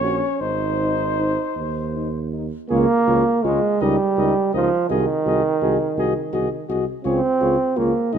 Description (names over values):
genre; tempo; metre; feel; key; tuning
classical, brass quintet; 52-56 BPM (dotted quarters); 6/8; rubato; Db major; A4 = 440 Hz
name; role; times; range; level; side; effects
mellow trumpet; melody; 0.0-8.2 s; C5 to Eb5; -30 LUFS; left 13 dB; none
mellow flugelhorn; second line; 0.0-8.2 s; Ab4 to Db5; -30 LUFS; right 6 dB; none
mellow French horn; accompaniment; 0.0-8.2 s; Eb4 to Gb4; -26 LUFS; left 6 dB; none
warm trombone; accompaniment; 0.0-8.2 s; Eb3 to Eb4; -20 LUFS; right 3 dB; none
mellow tuba; bass; 0.0-8.2 s; Ab1 to Eb2; -26 LUFS; right 4 dB; none
room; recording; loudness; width
light reverb; close, detailed microphones; -18 LUFS; side -8 dB against mid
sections
0.0-2.7 A section; 2.7-8.2 B section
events
none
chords
0.4 Ab; 2.7 Db; 3.8 Eb7/Db; 4.9 Ab7/C; 7.0 Db